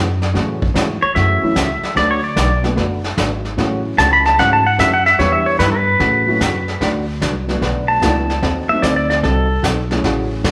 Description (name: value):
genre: country, western swing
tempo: 149 BPM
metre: 4/4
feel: swing 67% on 8ths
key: A major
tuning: A4 = 440 Hz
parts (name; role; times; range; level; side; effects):
- hollow-body jazz guitar; accompaniment; 0.0-10.5 s; C#3 to B4; -26 LUFS; equal; none
- upright bass; bass; 0.0-10.5 s; F#1 to A2; -23 LUFS; equal; none
- vintage brush drum kit; drums; 0.2-10.5 s; brushed snare drum, hi-hat, kick drum, snare drum; -24 LUFS; equal; none
- dark upright piano; accompaniment; 0.3-10.4 s; E3 to G#4; -25 LUFS; equal; none
- pedal steel guitar; second line; 1.0-9.6 s; A4 to B5; -18 LUFS; equal; none
room: wet large studio reverb, RT60 1.2 s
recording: band playing live in one room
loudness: -16 LUFS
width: mono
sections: 0.4-10.5 A section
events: pedal steel guitar solo 0.4-10.5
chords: 0.4 A6; 2.0 D6; 3.6 A6; 5.2 Em7; 6.0 A6; 6.8 D6; 8.4 D#dim7